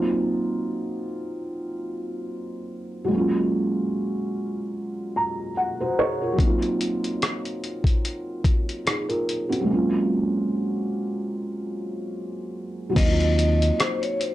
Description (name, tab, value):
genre	lo-fi hip hop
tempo	73 BPM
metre	4/4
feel	swing 55% on 16ths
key	Eb dorian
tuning	A4 = 439 Hz
part	felt-muted upright piano	accompaniment	0.0-14.3 s	Gb3 to Bb5	-24 LUFS	right 1 dB	cassette tape, low-pass filter
part	dusty soul sampler-style drum kit	drums	6.4-14.3 s	crash cymbal, hi-hat, kick drum, rim click	-23 LUFS	left 1 dB	none
part	vibraphone with hard mallets	melody	13.0-14.3 s	C5 to Eb5	-26 LUFS	equal	low-pass filter, analog delay, plate reverb
part	deep dub fingered electric bass	bass	13.0-13.7 s	Eb2	-21 LUFS	left 1 dB	none
room	moderate studio reverb, RT60 0.5 s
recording	none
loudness	-22 LUFS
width	side -15 dB against mid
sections	0.0-13.0 A section; 13.0-14.3 B section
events	felt piano fill 4.7-6.4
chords	0.0 Ebm69; 3.1 Gbmaj7; 6.4 Ebm69; 9.7 Gbmaj7; 13.0 Ebm69